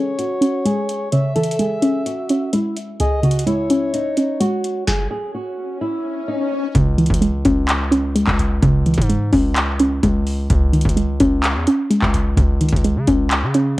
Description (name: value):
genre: hip hop, trap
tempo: 128 BPM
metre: 4/4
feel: half-time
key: C# minor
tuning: A4 = 439 Hz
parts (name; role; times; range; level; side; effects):
- flamenco guitar; melody; 0.0-6.5 s; D#4 to C#5; -24 LUFS; right 2 dB; low-pass filter, cassette tape, analog delay
- breathy flute-like synth lead; second line; 0.0-4.8 s; C#5 to E5; -26 LUFS; left 2 dB; chorus, cassette tape, analog delay
- soft round pluck; accompaniment; 0.0-13.8 s; C#2 to C#4; -18 LUFS; equal; chorus, low-pass filter, cassette tape
- booming analog drum machine; drums; 0.2-13.7 s; handclaps, hi-hat, kick drum, snare drum; -20 LUFS; equal; cassette tape
- swell; sound effects; 5.4-6.7 s; none; -26 LUFS; left 5 dB; none
- distorted 808-style bass; bass; 6.8-13.8 s; C#2 to C#3; -20 LUFS; equal; distortion
room: little or no reverb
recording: home recording on cassette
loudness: -16 LUFS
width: side -18 dB against mid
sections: 0.0-6.7 A section; 6.7-13.8 B section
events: filter sweep 0.0-6.7; stop 4.9-6.7; swell 5.4-6.7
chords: 0.0 C#m; 3.0 G#sus4/C#; 6.7 C#m; 10.5 G#sus4/C#